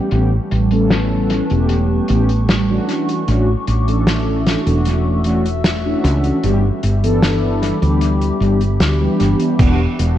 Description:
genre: vaporwave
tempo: 76 BPM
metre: 4/4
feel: straight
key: D major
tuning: A4 = 439 Hz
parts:
  - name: mellow synth brass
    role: accompaniment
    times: 0.0-9.8 s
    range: E3 to A4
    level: -18 LUFS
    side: equal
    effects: lush chorus, dub echo
  - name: warbly tape-like pad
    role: sustained chords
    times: 0.0-10.2 s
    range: G3 to E6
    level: -24 LUFS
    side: right 2 dB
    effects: chorus, built-in reverb, phaser
  - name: woody fretless electric bass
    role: bass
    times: 0.1-10.2 s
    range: E1 to D2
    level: -17 LUFS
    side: equal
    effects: lush chorus
  - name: loose indie drum kit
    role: drums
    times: 0.1-10.2 s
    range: crash cymbal, hi-hat, snare drum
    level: -21 LUFS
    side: left 1 dB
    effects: low-pass filter on hats, vintage 12-bit sampler grit, low-pass filter on cymbals, low-pass filter on snare, low-pass filter on room, dub echo
  - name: electronic kick drum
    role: drums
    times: 9.6-9.8 s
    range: none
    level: -13 LUFS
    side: equal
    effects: vintage 12-bit sampler grit
room: light reverb, small room reverb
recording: echo-heavy mix, cassette tape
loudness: -14 LUFS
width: side -12 dB against mid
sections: 0.0-9.6 A section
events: none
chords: 0.0 Em; 2.9 Dmaj9/A; 6.4 G6; 9.6 Em9

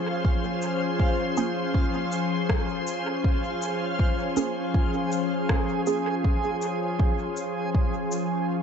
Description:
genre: ambient dub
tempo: 80 BPM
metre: 4/4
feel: swing 56% on 16ths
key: Bb minor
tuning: A4 = 440 Hz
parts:
  - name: soft additive organ-like pad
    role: sustained chords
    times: 0.0-8.5 s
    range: F3 to C5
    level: -27 LUFS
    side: left 1 dB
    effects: ensemble chorus, built-in reverb
  - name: filtered dub chord stab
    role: stabs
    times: 0.0-6.0 s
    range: Bb3 to Ab4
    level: -31 LUFS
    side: right 5 dB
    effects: phaser, dub echo
  - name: backwards swelling texture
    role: texture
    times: 0.0-8.5 s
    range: F4 to F5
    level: -33 LUFS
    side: right 2 dB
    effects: built-in reverb
  - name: electronic kick drum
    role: drums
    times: 0.2-7.9 s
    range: none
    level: -24 LUFS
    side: equal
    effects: overdrive
  - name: electronic shaker and rim click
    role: drums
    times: 0.6-8.3 s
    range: none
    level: -35 LUFS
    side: equal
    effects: overdrive, dub echo
room: moderate spring reverb, RT60 3.0 s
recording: echo-heavy mix, nothing above 8.0 kHz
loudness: -23 LUFS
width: side -7 dB against mid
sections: 0.0-8.6 A section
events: filter sweep on synth stab 0.0-8.6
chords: 0.0 Bbm7 (rootless)

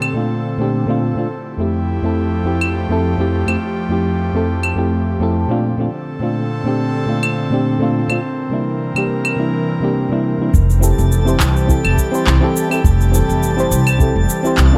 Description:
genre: sunset chillout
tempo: 104 BPM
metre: 4/4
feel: swing 54% on 16ths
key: F major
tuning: A4 = 440 Hz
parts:
  - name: mellow FM electric piano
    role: accompaniment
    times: 0.0-14.8 s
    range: F2 to C5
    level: -20 LUFS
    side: equal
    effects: chorus, digital delay
  - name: airy breathy pad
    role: sustained chords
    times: 0.0-14.8 s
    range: D3 to Bb4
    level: -24 LUFS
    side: equal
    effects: chorus
  - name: electronic claves, shaker and handclaps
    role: drums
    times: 0.0-14.7 s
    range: none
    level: -23 LUFS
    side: equal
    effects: overdrive
  - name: upright bass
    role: bass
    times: 10.5-14.7 s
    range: F1 to C2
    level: -16 LUFS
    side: equal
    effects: none
  - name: electronic kick drum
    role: drums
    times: 10.5-14.1 s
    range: none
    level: -17 LUFS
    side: equal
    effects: overdrive
  - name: twinkling granular texture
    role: texture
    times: 10.9-14.8 s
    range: A5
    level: -31 LUFS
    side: equal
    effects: built-in reverb
room: light reverb, digital ambience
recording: none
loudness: -17 LUFS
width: mono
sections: 0.0-10.5 A section; 10.5-14.8 B section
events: none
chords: 0.0 Bbmaj9; 1.3 Fmaj9; 5.6 Bbmaj9; 8.2 C7; 10.5 Fmaj9

